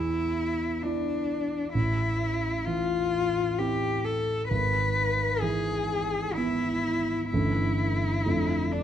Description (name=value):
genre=classical, romantic duo for cello and grand piano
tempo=65 BPM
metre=3/4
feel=rubato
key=unclear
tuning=A4 = 440 Hz
part: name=rich cello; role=melody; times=0.0-8.8 s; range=D4 to B4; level=-28 LUFS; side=left 3 dB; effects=none
part: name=dark concert grand piano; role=accompaniment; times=0.0-8.8 s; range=G1 to E4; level=-28 LUFS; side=right 2 dB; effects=none
room=moderate recital hall reverb, RT60 1.5 s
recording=dark, warm production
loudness=-25 LUFS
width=side -10 dB against mid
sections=0.0-8.8 A section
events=none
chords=0.0 E7(no3); 1.7 Am; 4.5 E/G#; 7.3 A7/G; 8.3 Dm/F